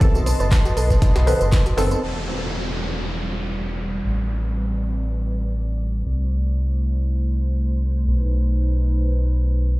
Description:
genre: deep house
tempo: 119 BPM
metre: 4/4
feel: swing 54% on 16ths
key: E minor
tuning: A4 = 440 Hz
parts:
  - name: warm analog pad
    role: sustained chords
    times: 0.0-9.8 s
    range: G3 to C6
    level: -30 LUFS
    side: right 1 dB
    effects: chorus, sidechain pumping
  - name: soft round pluck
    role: arpeggios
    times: 0.0-2.0 s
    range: D#4 to B4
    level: -29 LUFS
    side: right 3 dB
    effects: chorus, sidechain pumping, dub echo
  - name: filtered dub chord stab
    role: stabs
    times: 0.0-2.0 s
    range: D#3 to B4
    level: -26 LUFS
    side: equal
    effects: phaser, sidechain pumping, tape echo
  - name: round analog bass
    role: bass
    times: 0.0-9.8 s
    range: E1 to C2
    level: -21 LUFS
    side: equal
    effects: tube saturation, sidechain pumping
  - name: deep house drum kit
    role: drums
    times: 0.0-2.0 s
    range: handclaps, hi-hat, tambourine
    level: -31 LUFS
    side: right 1 dB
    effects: none
  - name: dusty soul sampler-style drum kit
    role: drums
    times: 0.0-2.0 s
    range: hi-hat, snare drum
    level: -36 LUFS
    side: equal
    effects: sidechain pumping on hats, high-pass filter on hats, high-pass filter on snare, high-pass filter on room
  - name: electronic kick drum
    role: drums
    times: 0.0-1.6 s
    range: none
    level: -17 LUFS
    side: equal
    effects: none
  - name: string machine, violins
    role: texture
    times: 0.0-2.0 s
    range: A4 to A5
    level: -38 LUFS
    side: equal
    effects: none
  - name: downlifter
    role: sound effects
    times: 2.0-6.1 s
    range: none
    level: -30 LUFS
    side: equal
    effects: none
room: digital ambience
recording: played on a big sound system in a bare room, stone room reverb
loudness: -19 LUFS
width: side -20 dB against mid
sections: 0.0-2.0 A section; 2.0-9.8 B section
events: filter sweep on analog synth pad 2.0-9.8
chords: 0.0 B7b9; 2.0 Em9; 4.0 Am11; 6.1 C69; 8.1 B7b9

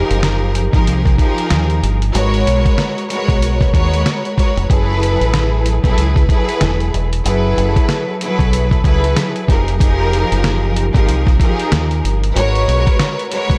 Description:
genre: hip hop, boom-bap hip-hop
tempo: 94 BPM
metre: 4/4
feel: swing 59% on 16ths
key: unclear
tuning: A4 = 440 Hz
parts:
  - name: warm studio string section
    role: accompaniment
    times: 0.0-13.6 s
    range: F3 to C#5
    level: -20 LUFS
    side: equal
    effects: cassette tape, analog delay
  - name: deep dub fingered electric bass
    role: bass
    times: 0.1-13.6 s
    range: E1 to Eb2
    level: -19 LUFS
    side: equal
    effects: none
  - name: dusty soul sampler-style drum kit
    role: drums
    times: 0.1-13.6 s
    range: hi-hat, kick drum, snare drum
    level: -18 LUFS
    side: equal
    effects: none
room: little or no reverb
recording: echo-heavy mix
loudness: -15 LUFS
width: mono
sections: 0.0-13.6 A section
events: none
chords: 0.0 Fm11; 2.1 G#m11; 4.7 F#m11; 9.5 Fm11; 12.4 G#m11

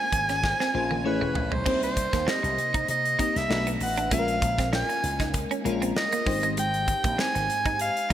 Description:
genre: polished 1980s jazz-funk pop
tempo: 98 BPM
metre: 4/4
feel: swing 54% on 16ths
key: unclear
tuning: A4 = 440 Hz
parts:
  - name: clear soprano saxophone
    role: melody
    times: 0.0-8.1 s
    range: Cb5 to Ab5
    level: -26 LUFS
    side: right 1 dB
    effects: none
  - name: bell-like FM electric piano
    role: accompaniment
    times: 0.0-8.1 s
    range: Ab3 to Eb5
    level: -30 LUFS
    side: left 3 dB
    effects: analog chorus
  - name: electric guitar at the edge of break-up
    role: riff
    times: 0.0-8.1 s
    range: G#3 to Eb4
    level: -34 LUFS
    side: right 6 dB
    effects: wide subtle chorus
  - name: slap bass with an envelope filter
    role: bass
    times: 0.1-8.1 s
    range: E1 to C3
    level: -32 LUFS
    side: equal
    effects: none
  - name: modern studio drum kit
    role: drums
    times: 0.1-8.1 s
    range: crash cymbal, hi-hat, kick drum, snare drum, toms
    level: -30 LUFS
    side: equal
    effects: gated reverb
room: moderate lush hall reverb, RT60 2.9 s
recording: bright 1980s-style digital production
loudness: -23 LUFS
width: side -11 dB against mid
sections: 0.0-1.7 A section; 1.7-8.1 B section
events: drum fill 0.4-1.7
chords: 0.0 Bbm9; 1.1 Amaj7; 1.7 Cm7; 3.5 Bm7; 4.1 Bbm7; 6.3 Abmaj7

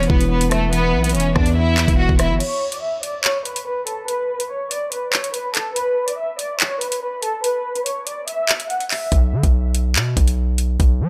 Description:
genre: hip hop, drill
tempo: 143 BPM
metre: 4/4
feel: half-time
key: unclear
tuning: A4 = 439 Hz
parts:
  - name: rich studio violin section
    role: melody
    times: 0.0-9.1 s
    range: A3 to F#6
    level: -25 LUFS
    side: equal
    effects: low-pass filter, tape echo
  - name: bell-like tine electric piano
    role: accompaniment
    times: 0.0-2.4 s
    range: E3 to E5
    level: -23 LUFS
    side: equal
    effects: low-pass filter
  - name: hard-hitting 808-style bass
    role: bass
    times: 0.0-2.4, 9.1-11.1 s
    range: E1 to F#3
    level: -22 LUFS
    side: equal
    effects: none
  - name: drill drum kit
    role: drums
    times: 0.0-10.9 s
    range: crash cymbal, handclaps, hi-hat, kick drum, rim click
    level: -22 LUFS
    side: equal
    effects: none
room: light reverb, digital ambience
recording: none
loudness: -20 LUFS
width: mono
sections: 0.0-2.4 A section; 2.4-11.1 B section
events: break 2.4-9.1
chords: 0.0 E5; 2.4 Bm; 5.8 E5; 9.1 N.C.

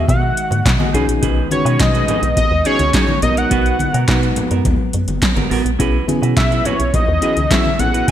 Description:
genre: early-eighties boogie funk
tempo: 105 BPM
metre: 4/4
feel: straight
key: unclear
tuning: A4 = 442 Hz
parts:
  - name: fat analog lead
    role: melody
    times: 0.0-8.1 s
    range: C#5 to F#5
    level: -19 LUFS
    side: left 1 dB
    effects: chorus
  - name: mellow FM electric piano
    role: accompaniment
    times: 0.0-8.1 s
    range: D#3 to B4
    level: -22 LUFS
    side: left 2 dB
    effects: chorus
  - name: chorused pulse-width pad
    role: sustained chords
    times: 0.0-8.1 s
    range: D#3 to F#4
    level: -26 LUFS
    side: right 1 dB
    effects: none
  - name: semi-hollow electric guitar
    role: riff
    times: 0.0-8.1 s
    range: B3 to D#5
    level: -24 LUFS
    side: right 8 dB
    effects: lush chorus
  - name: woody FM bass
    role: bass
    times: 0.0-8.1 s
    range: F#1 to B2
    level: -19 LUFS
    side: equal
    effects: none
  - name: electro analog drum machine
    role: drums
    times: 0.1-8.1 s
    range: handclaps, hi-hat, kick drum, snare drum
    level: -18 LUFS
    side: equal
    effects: overdrive, gated reverb
  - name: congas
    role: percussion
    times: 0.1-8.1 s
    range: none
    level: -25 LUFS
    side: left 3 dB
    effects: none
room: light reverb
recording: bright 1980s-style digital production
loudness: -13 LUFS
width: side -11 dB against mid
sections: 0.0-8.1 A section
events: none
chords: 0.0 Emaj9 (rootless); 0.9 B6; 3.2 G#m9/B; 5.8 F#7sus4/B

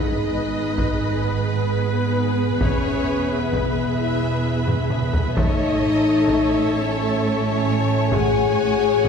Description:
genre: cinematic, epic orchestral film score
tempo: 87 BPM (dotted quarters)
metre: 12/8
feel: straight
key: unclear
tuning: A4 = 439 Hz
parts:
  - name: clear symphonic violin section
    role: melody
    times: 0.0-9.1 s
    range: B4 to G#5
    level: -30 LUFS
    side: left 4 dB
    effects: none
  - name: rich symphonic violin section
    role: second line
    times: 0.0-9.1 s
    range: B4 to B5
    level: -30 LUFS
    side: left 1 dB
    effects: none
  - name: warm symphonic viola section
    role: accompaniment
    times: 0.0-9.1 s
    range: G#4 to C#5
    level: -28 LUFS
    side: right 1 dB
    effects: none
  - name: dark French horn section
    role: sustained chords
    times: 0.0-9.1 s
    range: B3 to G#4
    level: -23 LUFS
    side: left 4 dB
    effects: none
  - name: rich symphonic string section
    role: sustained chords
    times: 0.0-9.1 s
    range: A3 to F#5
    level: -28 LUFS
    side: right 1 dB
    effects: none
  - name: warm symphonic cello section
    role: bass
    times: 0.0-9.1 s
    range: E2 to A2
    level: -28 LUFS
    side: right 4 dB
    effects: none
  - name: warm symphonic double bass section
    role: bass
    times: 0.0-9.1 s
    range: E1 to A1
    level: -27 LUFS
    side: right 4 dB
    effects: none
  - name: taiko ensemble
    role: drums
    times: 0.8-9.1 s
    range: none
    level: -25 LUFS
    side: equal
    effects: none
room: wet scoring stage reverb, RT60 1.5 s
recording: heard from further back in the room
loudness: -18 LUFS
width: side -6 dB against mid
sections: 0.0-9.1 A section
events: drum fill 4.7-5.4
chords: 0.0 G#m; 2.6 E; 5.4 A; 8.1 F#m/A

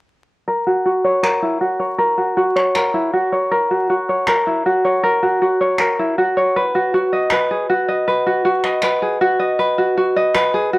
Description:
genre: folktronica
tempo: 79 BPM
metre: 4/4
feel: straight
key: unclear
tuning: A4 = 440 Hz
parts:
  - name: tenor ukulele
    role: arpeggios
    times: 0.5-10.8 s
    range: E4 to D#5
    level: -15 LUFS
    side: equal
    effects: low-pass filter, analog delay
  - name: finger snaps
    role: drums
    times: 1.2-10.5 s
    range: none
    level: -22 LUFS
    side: equal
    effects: cassette tape
room: moderate small room reverb, RT60 0.6 s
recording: home recording on cassette, vinyl crackle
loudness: -15 LUFS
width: side -21 dB against mid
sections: 0.5-10.8 A section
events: filter sweep on ukulele 0.5-10.8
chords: 0.5 F#7; 6.6 G#m7

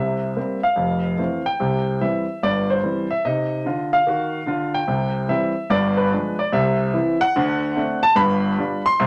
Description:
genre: jazz, stride piano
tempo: 146 BPM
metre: 4/4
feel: swing 66% on 8ths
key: C major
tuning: A4 = 443 Hz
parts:
  - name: clear grand piano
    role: solo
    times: 0.0-9.1 s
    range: F1 to C6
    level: -21 LUFS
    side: equal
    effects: none
room: moderate studio ambience, RT60 0.5 s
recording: none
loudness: -21 LUFS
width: mono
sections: 0.0-9.1 A section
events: none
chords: 0.0 C7; 0.8 Fmaj7; 1.6 C; 3.2 Cdim; 4.9 C; 5.7 G7b9; 6.5 C; 7.3 D7; 8.2 G7

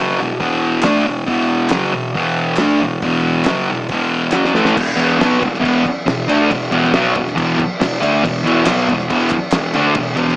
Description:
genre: garage rock duo or trio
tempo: 138 BPM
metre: 4/4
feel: straight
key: unclear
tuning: A4 = 441 Hz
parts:
  - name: thick fuzz guitar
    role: riff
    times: 0.0-10.4 s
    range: E2 to D4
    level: -14 LUFS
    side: equal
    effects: distortion
  - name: cloth-damped thuddy drum kit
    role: drums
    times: 0.4-10.3 s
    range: crash cymbal, hi-hat, kick drum, snare drum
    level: -21 LUFS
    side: equal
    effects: none
  - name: group handclap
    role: percussion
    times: 0.8-4.4, 8.7-9.6 s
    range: none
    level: -28 LUFS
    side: right 2 dB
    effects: none
room: moderate club reverb, RT60 0.7 s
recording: small speaker sound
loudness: -13 LUFS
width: side -22 dB against mid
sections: 0.0-4.8 A section; 4.8-10.4 B section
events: drum fill 4.3-4.8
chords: 0.0 E5

